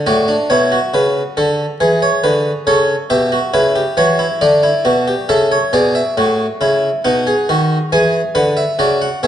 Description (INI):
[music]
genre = classical, baroque-style 3-part fugue for harpsichord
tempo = 68 BPM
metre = 3/4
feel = straight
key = D major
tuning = A4 = 442 Hz
[part]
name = harpsichord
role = solo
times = 0.0-9.3 s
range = A2 to G#5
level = -12 LUFS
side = equal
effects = none
[sound]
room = wet recital hall reverb, RT60 1.6 s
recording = dark, warm production, nothing above 11.0 kHz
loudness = -12 LUFS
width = side -10 dB against mid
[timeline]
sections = 0.0-9.3 A section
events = none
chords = 0.1 D/A; 1.8 E7; 2.7 A7; 4.4 D; 5.3 A; 7.0 B; 7.9 E7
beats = | 0.07 0.94 1.81 | 2.67 3.54 4.42 | 5.29 6.17 7.05 | 7.93 8.80